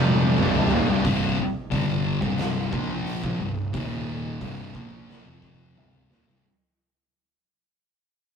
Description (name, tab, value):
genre	stoner and doom metal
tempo	89 BPM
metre	4/4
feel	straight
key	C minor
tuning	A4 = 439 Hz
part	overdriven tonewheel organ	sustained chords	0.0-1.0 s	C3 to D4	-32 LUFS	right 3 dB	none
part	distorted electric guitar	riff	0.0-1.1 s	C2 to F3	-29 LUFS	right 1 dB	overdrive
part	thick fuzz guitar	riff	0.0-6.4 s	C2 to Bb3	-26 LUFS	left 5 dB	distortion
part	thick fuzz guitar	riff	0.0-6.4 s	C2 to Bb3	-29 LUFS	right 5 dB	distortion
part	fuzz picked electric bass	bass	0.0-6.4 s	C1 to Bb1	-35 LUFS	right 1 dB	none
part	oversized low-tuned drum kit	drums	0.0-6.4 s	hi-hat, kick drum, snare drum, toms	-27 LUFS	right 1 dB	none
room	moderate studio reverb, RT60 0.6 s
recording	rough rehearsal-room recording, warm saturation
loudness	-22 LUFS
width	side -7 dB against mid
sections	0.0-1.1 A section; 1.1-6.4 B section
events	drum fill 0.0-1.1, 5.1-6.4; fade-out 1.1-6.4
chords	0.0 Cm; 1.1 C5; 3.7 Eb5; 4.4 Cm